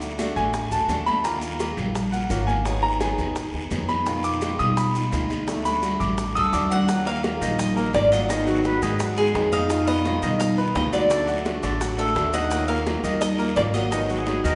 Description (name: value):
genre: latin, Cuban son and guajira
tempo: 170 BPM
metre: 4/4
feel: straight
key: Eb harmonic minor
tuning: A4 = 440 Hz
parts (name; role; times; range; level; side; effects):
- picked old ladder-braced acoustic guitar; accompaniment; 0.0-14.6 s; Cb3 to Ab4; -32 LUFS; equal; none
- upright bass; bass; 0.0-14.6 s; Ab1 to Cb3; -31 LUFS; equal; none
- bongos; percussion; 0.0-14.6 s; none; -36 LUFS; equal; none
- congas; percussion; 0.0-14.6 s; none; -32 LUFS; equal; none
- maracas; percussion; 0.0-14.6 s; none; -43 LUFS; equal; none
- guiro; percussion; 0.2-14.6 s; none; -40 LUFS; equal; none
- bright grand piano; arpeggios; 0.4-14.6 s; D3 to Eb6; -28 LUFS; equal; none
- Cuban tres; melody; 6.4-14.4 s; Ab4 to F#5; -27 LUFS; equal; none
- breathy bright silver concert flute; second line; 8.5-9.1, 14.1-14.6 s; Gb4 to Cb5; -33 LUFS; equal; none
room: wet recital hall reverb, RT60 1.7 s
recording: recorded in a church or concert hall, nothing above 10.8 kHz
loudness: -23 LUFS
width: mono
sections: 0.0-6.9 A section; 6.9-14.6 B section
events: grand piano solo 0.0-6.9; drum fill 5.5-6.9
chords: 0.0 D; 1.2 Ebmadd9; 2.7 Abm7; 4.1 Fm7b5; 5.5 D; 6.9 Ebmadd9; 8.3 Abm7; 9.7 Fm7b5; 11.1 D; 12.5 Ebmadd9; 13.9 Abm7